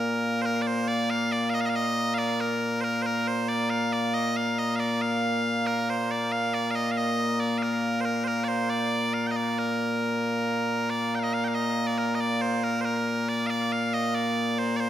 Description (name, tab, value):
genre	scottish traditional, Scottish pipe music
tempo	92 BPM (dotted quarters)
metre	6/8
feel	straight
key	Bb major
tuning	A4 = 440 Hz
part	loud bright bagpipes	solo	0.0-14.9 s	Bb2 to G5	-24 LUFS	equal	none
room	wet scoring stage reverb, RT60 1.9 s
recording	none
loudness	-24 LUFS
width	side -11 dB against mid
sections	0.5-10.9 A section; 10.9-14.9 B section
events	none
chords	none